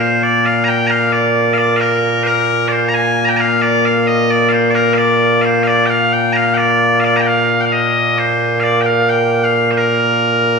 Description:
scottish traditional, Scottish pipe music; 88 BPM (dotted quarters); 6/8; straight; Bb major; A4 = 440 Hz
loud bright bagpipes; solo; 0.0-10.6 s; Bb2 to Bb5; -11 LUFS; equal
wet recital hall reverb, RT60 1.6 s; heard from further back in the room; -11 LUFS; side -4 dB against mid
0.2-10.6 A section

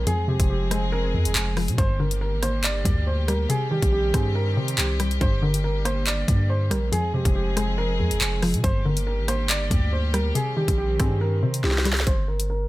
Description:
hip hop, drill; 140 BPM; 4/4; half-time; G phrygian; A4 = 444 Hz
dark upright piano; melody; 0.0-12.7 s; G4 to D5; -29 LUFS; right 1 dB; low-pass filter
hollow square pluck; accompaniment; 0.0-12.1 s; F2 to C4; -27 LUFS; left 1 dB; chorus, low-pass filter
dark chamber string section; sustained chords; 0.0-12.1 s; D3 to Ab4; -32 LUFS; left 1 dB
long sustained 808-style bass; bass; 0.0-12.7 s; F1 to C3; -25 LUFS; equal
drill drum kit; drums; 0.1-12.5 s; handclaps, hi-hat, kick drum, rim click, snare drum; -24 LUFS; equal
soft octave-layered synth lead; second line; 0.3-12.0 s; G4 to C5; -33 LUFS; right 4 dB; chorus, digital delay
digital ambience; -20 LUFS; side -17 dB against mid
0.0-12.1 A section
drum fill 11.6-12.1
0.1 Fm; 1.8 Gm; 3.5 Cm; 5.2 Gm; 6.9 Fm; 8.6 Gm; 10.4 Cm; 12.1 Gm

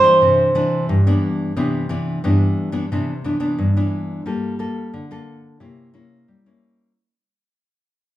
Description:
samba; 89 BPM; 4/4; straight; C major; A4 = 440 Hz
bowl-back mandolin; melody; 0.0-0.8 s; C5; -13 LUFS; right 2 dB
nylon-string guitar; accompaniment; 0.0-6.9 s; G2 to A4; -19 LUFS; equal
wet large studio reverb, RT60 0.9 s; band playing live in one room; -17 LUFS; side -14 dB against mid
0.0-1.6 A section; 1.6-7.0 B section
fade-out 1.6-7.0
0.0 Cmaj9; 4.3 Gm9; 5.6 C7b9

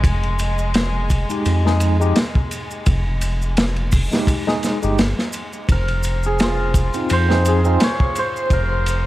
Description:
trip hop; 85 BPM; 4/4; swing 56% on 16ths; A4 = 439 Hz
dark studio string section; sustained chords; 0.0-9.1 s; Ab3 to C5; -29 LUFS; left 2 dB; vintage 12-bit sampler grit
round analog bass; bass; 0.0-9.1 s; F1 to F2; -19 LUFS; equal
crunchy breakbeat drum kit; drums; 0.0-9.1 s; hi-hat, kick drum, ride cymbal, snare drum; -20 LUFS; equal
maracas; percussion; 0.0-9.0 s; -35 LUFS; right 2 dB
tine electric piano; accompaniment; 1.3-7.8 s; Ab3 to Ab4; -24 LUFS; equal; medium stereo tremolo, vintage 12-bit sampler grit, tape echo
hammered dulcimer; melody; 5.7-9.1 s; F4 to Db5; -22 LUFS; right 2 dB; dub echo
small room ambience; vinyl crackle; -16 LUFS; side -16 dB against mid
0.0-9.1 A section
0.0 Fm7; 5.7 Fmadd11

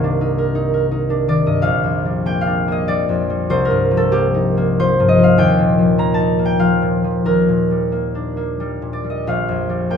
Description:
classical, solo harp piece; 82-100 BPM; 3/4; rubato; Bb major; A4 = 445 Hz
concert harp; solo; 0.0-10.0 s; Bb1 to Bb5; -15 LUFS; left 1 dB
light reverb; close, detailed microphones; -15 LUFS; side -7 dB against mid
0.0-1.6 A section; 1.6-10.0 B section
0.0 Cm11; 1.6 Bb6; 3.5 Cm11; 5.4 Ebadd9; 7.3 Ebmaj7; 9.3 Bb6

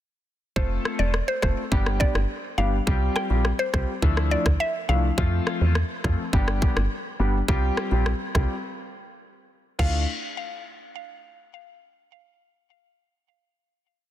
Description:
dancehall; 104 BPM; 4/4; straight; D minor; A4 = 438 Hz
mallet-like synth pluck; melody; 0.6-5.0, 9.8-10.1 s; C5 to G5; -30 LUFS; equal; chorus, ping-pong delay
warm baby grand piano; accompaniment; 0.6-10.0 s; F3 to A4; -29 LUFS; left 2 dB; sidechain pumping
woody FM bass; bass; 0.6-10.1 s; E1 to F2; -24 LUFS; equal
island pop drum kit; drums; 0.6-9.9 s; crash cymbal, kick drum, rim click; -26 LUFS; equal; soft clipping on snare
little or no reverb; dense, heavily limited modern master; -22 LUFS; side -12 dB against mid
0.6-9.8 verse; 9.8-12.1 final chord
break 8.6-9.8
0.6 F; 1.7 G; 2.9 Csus4; 4.0 Dmadd9; 5.2 F; 6.3 G; 7.5 Csus4; 8.6 N.C.; 9.8 Dmadd9

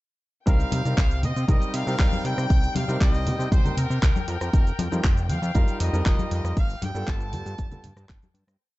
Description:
nu-disco, nu disco; 118 BPM; 4/4; straight; C dorian; A4 = 438 Hz
brilliant trumpet section; melody; 0.5-8.4 s; Bb4 to A5; -33 LUFS; equal; dub echo
warm grand piano; accompaniment; 0.5-7.8 s; G3 to Bb4; -32 LUFS; equal; sidechain pumping
warm studio string section; sustained chords; 0.5-8.6 s; G5; -39 LUFS; left 5 dB; sidechain pumping
fat analog bass; bass; 0.5-8.6 s; F1 to C3; -26 LUFS; equal
electronic kick drum; drums; 0.5-8.2 s; -20 LUFS; equal
house drum kit; drums; 0.5-8.6 s; handclaps, hi-hat, rim click, shaker; -34 LUFS; equal
congas; percussion; 0.7-8.3 s; -32 LUFS; left 2 dB
small room ambience; dark, warm production, nothing above 7.9 kHz; -21 LUFS; side -18 dB against mid
0.5-8.6 drop
drop 0.5-8.6; fade-out 5.9-8.6
0.5 Cm7; 4.3 F9sus4; 6.6 G9

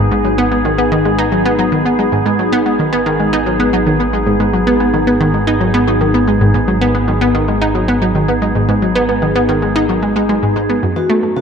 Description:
ambient, sequencer-driven space music; 112 BPM; 4/4; straight; G# minor; A4 = 439 Hz
evolving wavetable pad; sustained chords; 0.0-11.4 s; B3 to G#4; -16 LUFS; equal; chorus, built-in reverb
analog pluck; riff; 0.0-11.4 s; F#2 to D#4; -14 LUFS; equal; chorus, cassette tape, tape echo
fat analog bass; bass; 0.0-10.8 s; G#1; -21 LUFS; equal
vibraphone with soft mallets; arpeggios; 11.0-11.4 s; F#4; -16 LUFS; left 2 dB; auto-pan, tape echo
wet spring reverb, RT60 2.5 s; echo-heavy mix; -11 LUFS; side -6 dB against mid
0.0-10.8 A section
0.0 G#m; 10.8 F#m

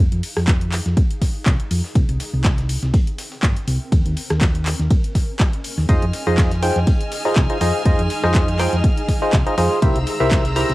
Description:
piano house; 122 BPM; 4/4; swing 55% on 16ths; F minor; A4 = 439 Hz
hollow-body short-scale fingered electric bass; bass; 0.0-10.7 s; G1 to F2; -21 LUFS; equal; sidechain pumping
granular cloud pad; texture; 0.2-10.7 s; C4 to F5; -33 LUFS; right 1 dB; built-in reverb, sidechain pumping, cassette tape
house drum kit; drums; 0.1-10.7 s; handclaps, hi-hat, rim click; -27 LUFS; equal; overdrive
dusty soul sampler-style drum kit; drums; 0.2-10.7 s; hi-hat, ride cymbal, snare drum; -38 LUFS; right 1 dB; high-pass filter on cymbals, high-pass filter on snare, high-pass filter on hats
electronic kick drum; drums; 0.5-10.4 s; -17 LUFS; equal; overdrive
clear studio violin section; sustained chords; 5.9-10.7 s; C5 to F6; -28 LUFS; equal; sidechain pumping, cassette tape
percussive organ stab; riff; 5.9-10.7 s; Eb4 to Bb5; -20 LUFS; equal; chorus, phaser, sidechain pumping, cassette tape, analog delay
light reverb, digital ambience; home recording on cassette; -16 LUFS; side -18 dB against mid
0.0-10.7 A section
fade-in on ambient pad 0.0-10.7
0.0 Fm7; 2.0 C7; 3.9 Eb7sus4; 5.9 Fm7; 9.8 C7

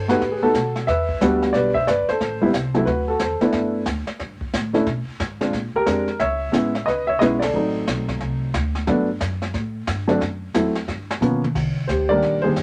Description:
jazz piano trio; 180 BPM; 4/4; swing 63% on 8ths; A4 = 439 Hz
dark baby grand piano; melody; 0.0-12.6 s; Eb3 to E5; -22 LUFS; equal
upright bass; bass; 0.0-12.6 s; Eb1 to B2; -30 LUFS; equal
jazz brush drum kit; drums; 0.1-12.6 s; brushed snare drum, hi-hat, kick drum, ride cymbal, snare drum, toms; -31 LUFS; equal
light reverb; -21 LUFS; mono
0.9-11.6 A section; 11.6-12.6 B section
band accent 7.4; drum fill 10.9-11.6
0.0 B7; 0.9 Em7; 2.2 Am; 2.9 Dadd9; 3.5 G6; 4.9 N.C.; 5.5 A#9; 6.2 Amaj9; 7.5 D7b9; 8.9 Gmaj7sus2; 10.2 F#m7b5; 10.9 G7#9; 11.6 Cm9

